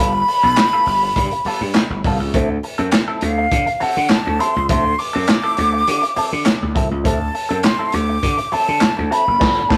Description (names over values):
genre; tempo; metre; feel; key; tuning
funk; 102 BPM; 4/4; straight; D mixolydian; A4 = 440 Hz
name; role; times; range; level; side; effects
breathy jazz flute; melody; 0.0-9.8 s; F5 to D6; -20 LUFS; equal; none
clean electric guitar; accompaniment; 0.0-9.8 s; F3 to A4; -26 LUFS; equal; wah
gritty slap bass; bass; 0.0-9.8 s; F#1 to D3; -24 LUFS; equal; overdrive
crunchy breakbeat drum kit; drums; 0.3-9.8 s; crash cymbal, handclaps, hi-hat, kick drum, snare drum; -22 LUFS; equal; none
room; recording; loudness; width
moderate studio reverb, RT60 0.6 s; rough rehearsal-room recording; -17 LUFS; mono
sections
0.0-9.8 A section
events
band accent 9.4-9.8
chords
0.0 G9; 2.3 D9